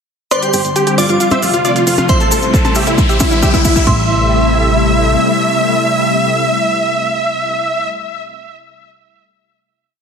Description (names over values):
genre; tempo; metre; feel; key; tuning
uplifting trance; 135 BPM; 4/4; straight; A minor; A4 = 440 Hz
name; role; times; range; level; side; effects
big supersaw lead; melody; 0.3-7.9 s; E4 to E5; -15 LUFS; right 1 dB; cassette tape, sidechain pumping, low-pass filter, ping-pong delay
analog pluck; second line; 0.3-7.9 s; E5 to E6; -24 LUFS; equal; chorus, sidechain pumping, ping-pong delay
glassy synth bell; second line; 0.3-7.9 s; C5 to D6; -20 LUFS; equal; chorus, phaser, ping-pong delay
analog string pad; sustained chords; 0.4-7.9 s; C3 to E4; -17 LUFS; left 2 dB; ensemble chorus, sidechain pumping
techno drum kit; drums; 0.3-4.0 s; crash cymbal, hi-hat, percussion blips; -22 LUFS; left 1 dB; none
cabasa; percussion; 0.3-3.8 s; none; -23 LUFS; left 2 dB; none
riser; sound effects; 1.8-3.9 s; none; -24 LUFS; left 3 dB; none
solid FM bass; bass; 0.5-5.2 s; E1 to A2; -19 LUFS; equal; sidechain pumping, high-pass filter
electronic kick drum; drums; 2.1-4.0 s; none; -14 LUFS; equal; none
room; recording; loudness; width
moderate digital room reverb, RT60 0.9 s; heavily compressed radio sound; -11 LUFS; side -6 dB against mid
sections
0.3-3.9 build; 3.9-7.4 final chord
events
build-up 0.3-3.9; riser 1.8-3.9; drum fill 2.1-3.9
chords
0.3 Gsus4; 1.2 F; 2.1 Am7; 3.0 Em7; 3.9 Am7